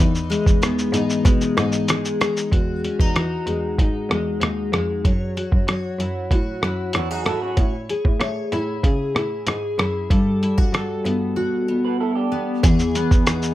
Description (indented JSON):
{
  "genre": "indie pop, bedroom pop",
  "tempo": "95 BPM",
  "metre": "4/4",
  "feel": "straight",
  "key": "E major",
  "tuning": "A4 = 439 Hz",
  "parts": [
    { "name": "picked steel-string acoustic guitar", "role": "accompaniment", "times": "0.0-13.5 s", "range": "E3 to C#5", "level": "-22 LUFS", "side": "left 2 dB", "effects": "analog chorus, vibrato effect" },
    { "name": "rich cello", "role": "bass", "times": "0.0-13.5 s", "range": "D#2 to A3", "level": "-26 LUFS", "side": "right 1 dB", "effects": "none" },
    { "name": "lo-fi sampler-style drum kit", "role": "drums", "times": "0.2-13.5 s", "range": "hi-hat, kick drum, rim click, shaker", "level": "-19 LUFS", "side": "equal", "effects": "none" },
    { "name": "electric guitar through a small old amp", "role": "second line", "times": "6.9-7.7, 11.8-12.6 s", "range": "C#4 to B4", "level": "-27 LUFS", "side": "right 6 dB", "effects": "wide subtle chorus, slapback echo" }
  ],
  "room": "light reverb",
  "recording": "none",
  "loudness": "-18 LUFS",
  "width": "side -15 dB against mid",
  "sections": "0.0-2.5 A section; 2.5-12.6 B section",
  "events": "break 11.4-12.6",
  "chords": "0.0 Emaj7; 2.5 Emaj9; 5.0 F#7(no3); 7.6 Amaj7; 10.1 Gmaj9; 12.6 Emaj7"
}